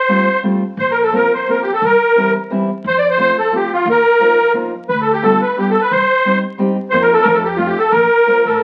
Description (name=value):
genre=musette waltz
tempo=176 BPM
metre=3/4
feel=rubato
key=Bb major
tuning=A4 = 441 Hz
part: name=musette accordion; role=melody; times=0.0-8.6 s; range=F4 to D5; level=-14 LUFS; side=equal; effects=none
part: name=fingerpicked steel-string acoustic guitar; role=accompaniment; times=0.1-8.6 s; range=E3 to G4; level=-22 LUFS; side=equal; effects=none
part: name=upright bass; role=bass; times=0.8-8.6 s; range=Bb1 to A2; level=-29 LUFS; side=equal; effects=none
room=wet studio reverb, RT60 0.9 s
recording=very old 78 rpm record, vinyl crackle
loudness=-14 LUFS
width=mono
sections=0.0-8.6 A section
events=none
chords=0.0 Fadd9; 0.8 Bbsus2; 1.8 C; 2.8 F; 3.9 Ebsus2; 4.9 G7/D; 5.9 Cm; 6.9 F7sus4; 7.3 F7; 7.9 Bb